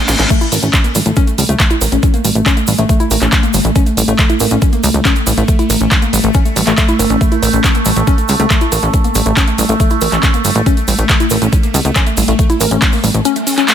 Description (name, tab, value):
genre	psychedelic trance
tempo	139 BPM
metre	4/4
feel	straight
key	unclear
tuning	A4 = 441 Hz
part	evolving wavetable pad	sustained chords	0.0-13.7 s	A3	-18 LUFS	right 1 dB	phaser, built-in reverb, vintage 12-bit sampler grit, sidechain pumping
part	woody wave-folded pluck	riff	0.0-13.7 s	G3 to Bb4	-18 LUFS	left 2 dB	chorus, auto-pan, sidechain pumping, dub echo
part	reverse cymbal	sound effects	0.0-0.3, 13.4-13.7 s	none	-21 LUFS	left 1 dB	none
part	plucky analog bass	bass	0.1-13.2 s	G1 to C#2	-15 LUFS	equal	none
part	drum and bass drum kit	drums	0.1-13.7 s	crash cymbal, handclaps, hi-hat, snare drum	-17 LUFS	equal	overdrive
part	egg shaker	percussion	0.1-13.7 s	none	-24 LUFS	right 3 dB	none
part	electronic kick drum	drums	0.3-12.9 s	none	-12 LUFS	equal	overdrive
room	digital ambience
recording	none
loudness	-10 LUFS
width	side -9 dB against mid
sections	0.3-13.7 A section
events	drum fill 0.0-0.3; reverse cymbal 0.0-0.3; drop 0.3-13.7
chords	0.3 A5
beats	| 0.30 0.73 1.17 1.60 | 2.03 2.46 2.89 3.32 | 3.76 4.19 4.62 5.05 | 5.48 5.91 6.35 6.78 | 7.21 7.64 8.07 8.50 | 8.94 9.37 9.80 10.23 | 10.66 11.09 11.53 11.96 | 12.39 12.82 13.25 13.68